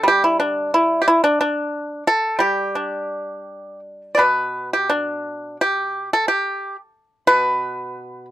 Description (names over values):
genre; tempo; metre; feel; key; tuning
chinese traditional, Chinese solo plucked strings; 82-90 BPM; 2/4; rubato; G gong mode; A4 = 440 Hz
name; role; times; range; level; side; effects
pipa; solo; 0.0-8.3 s; B2 to D5; -18 LUFS; equal; none
room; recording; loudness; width
little or no reverb; dry, close 1970s-style studio recording; -17 LUFS; side -14 dB against mid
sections
0.0-4.2 A section; 4.2-8.3 B section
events
none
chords
none